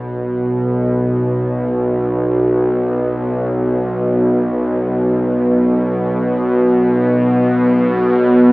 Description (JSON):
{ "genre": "ambient", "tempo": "free time", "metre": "none", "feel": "none", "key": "unclear", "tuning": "A4 = 439 Hz", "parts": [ { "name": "bowed-like drone", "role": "drone", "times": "0.0-8.5 s", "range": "B1 to B2", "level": "-13 LUFS", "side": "equal", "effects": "built-in reverb" }, { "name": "deep dark ambient pad", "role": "sustained chords", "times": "8.0-8.5 s", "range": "B3", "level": "-16 LUFS", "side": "equal", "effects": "chorus, built-in reverb" } ], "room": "wet huge ambient reverb, RT60 9.1 s", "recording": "worn, warbling old tape, cassette tape, warbly pitch drift, small speaker sound", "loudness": "-13 LUFS", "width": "side -21 dB against mid", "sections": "0.0-8.5 A section", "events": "none", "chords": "none" }